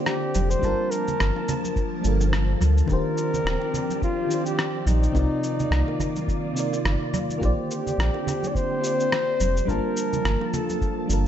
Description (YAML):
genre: sunset chillout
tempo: 106 BPM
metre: 4/4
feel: swing 57% on 16ths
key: G minor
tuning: A4 = 438 Hz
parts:
  - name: mellow FM electric piano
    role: accompaniment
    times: 0.0-11.3 s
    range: C3 to A5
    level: -29 LUFS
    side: moving between left 4 dB and right 5 dB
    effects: chorus, auto-pan, tape echo
  - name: soft string machine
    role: sustained chords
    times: 0.0-11.3 s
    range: D3 to A5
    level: -30 LUFS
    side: equal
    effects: phaser, ensemble chorus
  - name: breathy flugelhorn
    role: melody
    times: 0.1-11.1 s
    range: Eb4 to D5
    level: -28 LUFS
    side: left 2 dB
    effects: vintage 12-bit sampler grit, tape echo
  - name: electronic rim click and shaker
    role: drums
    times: 0.1-11.2 s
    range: none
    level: -31 LUFS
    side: equal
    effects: overdrive, analog delay
  - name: warm sub bass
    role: bass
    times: 0.4-11.3 s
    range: Eb1 to D2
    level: -22 LUFS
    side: equal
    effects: none
  - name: congas and bongos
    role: percussion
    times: 0.4-10.8 s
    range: none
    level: -33 LUFS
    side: right 4 dB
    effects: analog delay
  - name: electronic kick drum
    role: drums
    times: 0.6-10.9 s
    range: none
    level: -28 LUFS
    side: equal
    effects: overdrive
room: light reverb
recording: echo-heavy mix, nothing above 7.9 kHz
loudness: -21 LUFS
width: side -10 dB against mid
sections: 0.0-11.3 A section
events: none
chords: 0.0 Bb69; 0.6 Gm9; 2.9 Ebmaj13; 5.2 Cm11; 7.4 Bb69; 9.7 Gm9